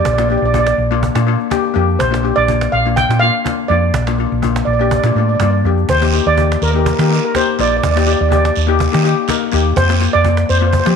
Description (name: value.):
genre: calypso.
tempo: 124 BPM.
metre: 4/4.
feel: swing 53% on 16ths.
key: Bb major.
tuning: A4 = 440 Hz.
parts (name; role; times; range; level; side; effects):
steel pan; melody; 0.0-10.9 s; Bb4 to G5; -17 LUFS; right 3 dB; none.
steel pan; accompaniment; 0.0-10.9 s; Bb3 to Bb4; -18 LUFS; left 12 dB; none.
hollow-body short-scale fingered electric bass; bass; 0.0-11.0 s; Bb1 to F3; -16 LUFS; right 1 dB; none.
cajon; drums; 0.1-11.0 s; none; -23 LUFS; right 6 dB; none.
guiro; percussion; 5.9-11.0 s; none; -26 LUFS; right 15 dB; none.
room: light reverb, small room ambience.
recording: 1960s-style stereo with parts hard left and right.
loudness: -12 LUFS.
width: side -6 dB against mid.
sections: 0.0-11.0 A section.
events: none.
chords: 0.0 Bb; 5.9 Eb; 9.8 Fsus4.